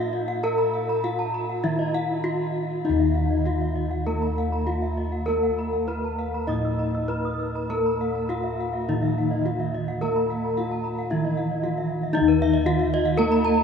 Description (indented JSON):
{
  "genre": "Balinese gamelan",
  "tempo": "99-117 BPM",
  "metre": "4/4",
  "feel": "straight",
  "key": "Eb pelog",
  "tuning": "A4 = 440 Hz",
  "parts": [
    { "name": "gamelan-type bronze metallophone", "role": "melody", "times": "0.0-13.6 s", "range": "Eb4 to Eb5", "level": "-27 LUFS", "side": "left 2 dB", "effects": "none" },
    { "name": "gamelan-type bronze metallophone", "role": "arpeggios", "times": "0.0-13.6 s", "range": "Eb5 to Fb6", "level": "-32 LUFS", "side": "right 3 dB", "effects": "none" },
    { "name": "gamelan-type bossed gongs", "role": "bass", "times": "0.0-13.6 s", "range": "Eb2 to Bb4-45c", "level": "-26 LUFS", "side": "left 1 dB", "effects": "none" },
    { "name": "gamelan-type bronze metallophone", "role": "arpeggios", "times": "0.1-13.6 s", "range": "Cb5-40c to Fb6", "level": "-33 LUFS", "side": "left 4 dB", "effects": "none" },
    { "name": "gamelan-type bronze metallophone", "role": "accompaniment", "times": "2.9-13.6 s", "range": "Eb3 to Eb4", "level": "-30 LUFS", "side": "right 5 dB", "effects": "none" }
  ],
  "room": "moderate huge ambient reverb, RT60 7.3 s",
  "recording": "in a vast, echoing space",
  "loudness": "-22 LUFS",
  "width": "side -6 dB against mid",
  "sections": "0.0-12.2 A section; 12.2-13.6 B section",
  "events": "none",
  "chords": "none"
}